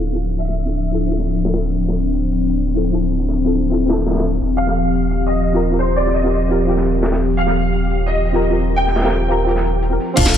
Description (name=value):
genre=liquid drum and bass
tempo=172 BPM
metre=4/4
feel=straight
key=unclear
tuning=A4 = 440 Hz
part: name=warm grand piano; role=melody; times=0.0-1.6, 4.6-10.4 s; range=C5 to G5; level=-23 LUFS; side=right 1 dB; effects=ensemble chorus, analog delay
part: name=deep mellow chord stab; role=accompaniment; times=0.0-10.4 s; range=C4 to Bb4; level=-22 LUFS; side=equal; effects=chorus, diffuse ambient delay
part: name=warm analog pad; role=sustained chords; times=0.0-10.1 s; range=F3 to G4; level=-21 LUFS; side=left 2 dB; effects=chorus, sidechain pumping
part: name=warm sub bass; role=bass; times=0.0-10.4 s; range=D1 to Eb1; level=-20 LUFS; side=equal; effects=tube saturation
part: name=crunchy breakbeat drum kit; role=drums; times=0.1-10.4 s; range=hi-hat, snare drum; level=-26 LUFS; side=equal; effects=high-pass filter on hats, low-pass filter on hats, high-pass filter on snare, low-pass filter on snare, high-pass filter on room, low-pass filter on room
part: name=drum and bass drum kit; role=drums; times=10.2-10.4 s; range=crash cymbal, hi-hat, snare drum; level=-23 LUFS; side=left 2 dB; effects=none
part: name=electronic kick drum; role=drums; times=10.2 s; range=none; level=-18 LUFS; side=equal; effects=none
part: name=impact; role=sound effects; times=10.2-10.4 s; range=none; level=-17 LUFS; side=right 1 dB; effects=none
room=moderate church reverb, RT60 3.4 s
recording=dreamy mix soaked in reverb, low-pass filter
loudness=-15 LUFS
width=side -9 dB against mid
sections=0.0-10.2 A section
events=filter sweep on synth stab 0.0-10.2; filter sweep on analog synth pad 0.0-10.2; filter sweep 0.0-10.2; impact 10.2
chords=0.0 Dm9; 4.4 Eb69